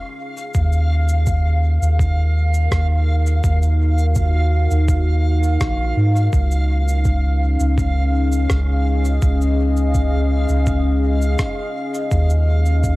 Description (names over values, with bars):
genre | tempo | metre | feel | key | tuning
ambient dub | 83 BPM | 4/4 | straight | Eb minor | A4 = 440 Hz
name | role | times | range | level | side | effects
deep dark ambient pad | sustained chords | 0.0-13.0 s | Db4 to F5 | -24 LUFS | left 1 dB | chorus, built-in reverb, cassette tape
backwards swelling texture | texture | 0.0-13.0 s | F5 | -28 LUFS | equal | built-in reverb, cassette tape
cabasa and rim click | drums | 0.4-13.0 s | none | -30 LUFS | equal | cassette tape, dub echo
soft dub sub bass | bass | 0.5-13.0 s | Bb1 to Ab2 | -16 LUFS | equal | none
electronic kick drum | drums | 0.5-13.0 s | none | -22 LUFS | equal | cassette tape
room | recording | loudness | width
studio reverb | home recording on cassette | -15 LUFS | side -20 dB against mid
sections
0.0-13.0 A section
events
fade-in on ambient pad 0.0-13.0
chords
0.0 Db; 0.5 Ebm7; 6.3 Db; 12.1 Ebm7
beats
| 0.55 1.27 1.99 2.72 | 3.44 4.16 4.88 5.61 | 6.33 7.05 7.78 8.50 | 9.22 9.94 10.67 11.39 | 12.11 12.84